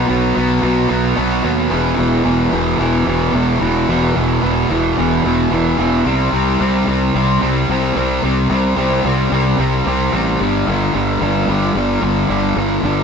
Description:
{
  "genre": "post-rock",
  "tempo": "110 BPM",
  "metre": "4/4",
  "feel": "straight",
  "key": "E minor",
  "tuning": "A4 = 439 Hz",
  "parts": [
    { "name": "fuzz guitar", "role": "riff", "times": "0.0-13.0 s", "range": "E2 to C4", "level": "-15 LUFS", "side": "equal", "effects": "distortion" },
    { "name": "fuzz fingered electric bass", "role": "bass", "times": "0.0-13.0 s", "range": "E1 to D#2", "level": "-19 LUFS", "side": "equal", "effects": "overdrive" }
  ],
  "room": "moderate stone room reverb, RT60 1.1 s",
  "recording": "band playing live in one room",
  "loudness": "-14 LUFS",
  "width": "side -6 dB against mid",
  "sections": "0.0-13.0 A section",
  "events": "none",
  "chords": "0.0 B; 1.7 E5; 6.1 C5; 10.4 G5"
}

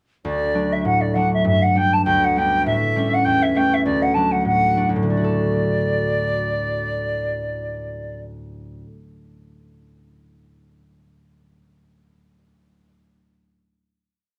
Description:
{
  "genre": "celtic folk, Celtic reel",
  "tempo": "201 BPM",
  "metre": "4/4",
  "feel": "swing 56% on 8ths",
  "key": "D major",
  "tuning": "A4 = 439 Hz",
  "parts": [
    { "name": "concert harp", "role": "accompaniment", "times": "0.2-9.0 s", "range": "D2 to A4", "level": "-24 LUFS", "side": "equal", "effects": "none" },
    { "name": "wooden flute", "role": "melody", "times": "0.3-8.2 s", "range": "D5 to A5", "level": "-23 LUFS", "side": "equal", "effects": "none" }
  ],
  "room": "moderate studio ambience, RT60 0.5 s",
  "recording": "none",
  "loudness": "-20 LUFS",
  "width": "mono",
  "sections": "0.2-5.1 A section; 5.1-7.4 final chord",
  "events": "none",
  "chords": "0.2 D; 1.5 G; 2.7 A7; 3.9 D"
}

